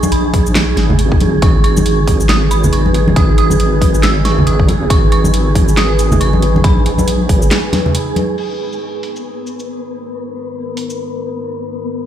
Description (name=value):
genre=deep dubstep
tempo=138 BPM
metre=4/4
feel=swing 59% on 16ths, half-time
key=G# minor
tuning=A4 = 440 Hz
part: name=dark detuned synth bell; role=melody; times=0.0-7.9 s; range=B5 to E6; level=-23 LUFS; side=right 1 dB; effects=chorus, tremolo, dub echo
part: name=deep dark ambient pad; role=sustained chords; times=0.0-12.1 s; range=G#3 to B4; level=-22 LUFS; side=left 2 dB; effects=chorus, built-in reverb
part: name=dubstep drum kit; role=drums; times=0.0-11.0 s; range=crash cymbal, handclaps, hi-hat, shaker, snare drum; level=-20 LUFS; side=equal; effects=low-pass filter on hats, small room ambience, low-pass filter on perc, low-pass filter on snare, low-pass filter on cymbals
part: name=congas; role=percussion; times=0.0-8.3 s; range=none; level=-18 LUFS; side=equal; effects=none
part: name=wind-like tuned noise texture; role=texture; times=0.0-12.1 s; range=B3 to G#4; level=-22 LUFS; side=right 6 dB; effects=built-in reverb
part: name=deep soft wobble bass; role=bass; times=0.1-7.5 s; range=G#1 to A#1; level=-14 LUFS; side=equal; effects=chorus
part: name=electronic kick drum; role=drums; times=0.3-7.4 s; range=none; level=-13 LUFS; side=equal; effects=small room ambience
room=little or no reverb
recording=played on a big sound system in a bare room, stone room reverb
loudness=-10 LUFS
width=side -10 dB against mid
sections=0.0-8.4 A section; 8.4-12.1 B section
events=drop 0.0-8.4; break 7.5-8.4; filter sweep on ambient pad 8.4-12.1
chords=0.0 G#m